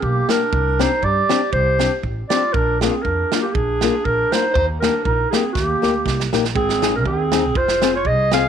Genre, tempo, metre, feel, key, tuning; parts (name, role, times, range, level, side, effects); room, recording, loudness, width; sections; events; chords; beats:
alpine folk, alpine dance band; 120 BPM; 2/4; swing 54% on 8ths; Eb major; A4 = 440 Hz
dark clarinet; melody; 0.0-8.5 s; G4 to F5; -20 LUFS; equal
dark clarinet; second line; 0.0-8.5 s; Bb3 to Ab4; -26 LUFS; right 13 dB
upright bass; bass; 0.0-8.5 s; F1 to G2; -23 LUFS; equal
natural country drum kit; drums; 0.0-8.4 s; hi-hat, kick drum, snare drum; -24 LUFS; right 5 dB
fingerpicked old ladder-braced acoustic guitar; accompaniment; 0.3-8.4 s; Bb3 to Ab4; -22 LUFS; left 12 dB
light reverb, small room ambience; 1960s-style stereo with parts hard left and right; -16 LUFS; side -8 dB against mid
0.0-6.6 A section; 6.6-8.5 B section
drum fill 5.5-6.6
0.0 Gm; 0.5 Csus2; 2.5 Bb7; 4.6 Eb; 6.6 Ab; 7.6 Fm
0.03 | 0.53 1.03 | 1.53 2.04 | 2.55 3.05 | 3.55 4.05 | 4.55 5.05 | 5.55 6.05 | 6.56 7.06 | 7.56 8.06